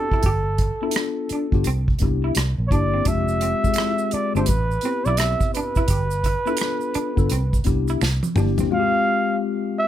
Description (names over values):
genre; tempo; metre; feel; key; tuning
R&B, neo-soul; 85 BPM; 4/4; swing 63% on 16ths; C major; A4 = 439 Hz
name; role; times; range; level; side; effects
breathy flugelhorn; melody; 0.0-9.9 s; A4 to F5; -24 LUFS; right 2 dB; plate reverb, tape echo
electric guitar through a small old amp; second line; 0.0-8.7 s; C4 to G4; -30 LUFS; right 3 dB; tremolo
mellow tine electric piano; accompaniment; 0.0-9.9 s; Ab3 to A4; -25 LUFS; left 8 dB; auto-pan, plate reverb
unplugged drum kit; drums; 0.1-8.7 s; hi-hat, kick drum, rim click, snare drum, toms; -23 LUFS; right 1 dB; none
vintage muted fingered electric bass; bass; 0.2-8.6 s; F1 to C2; -23 LUFS; right 1 dB; none
tube shaker and finger snaps; percussion; 3.1-8.7 s; none; -36 LUFS; right 13 dB; none
room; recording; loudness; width
light reverb; none; -19 LUFS; side -11 dB against mid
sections
0.0-8.7 A section; 8.7-9.9 B section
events
drum fill 8.0-8.7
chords
0.2 G7; 1.7 Cmaj7; 2.4 C7; 3.1 Fmadd9; 4.5 Am9; 5.9 G7; 7.3 Cmaj7; 8.0 C7; 8.7 Fmadd9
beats
| 0.24 0.95 1.66 2.36 | 3.07 3.77 4.48 5.19 | 5.89 6.60 7.30 8.01 | 8.71 9.42